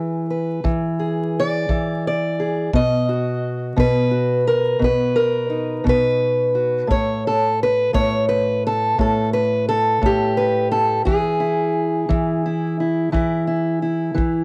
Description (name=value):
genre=acoustic country blues, solo or duo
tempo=58 BPM (dotted quarters)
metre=12/8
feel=straight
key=unclear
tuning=A4 = 440 Hz
part: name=fingerpicked steel-string acoustic guitar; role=melody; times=0.0-14.4 s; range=A2 to D#5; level=-20 LUFS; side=equal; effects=none
part: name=kick drum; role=drums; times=0.6-14.3 s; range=none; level=-25 LUFS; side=equal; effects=none
room=studio ambience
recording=dry, close 1970s-style studio recording, vinyl crackle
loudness=-20 LUFS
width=mono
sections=0.0-14.4 A section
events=none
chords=0.0 E7; 2.7 B; 6.9 N.C.; 11.1 E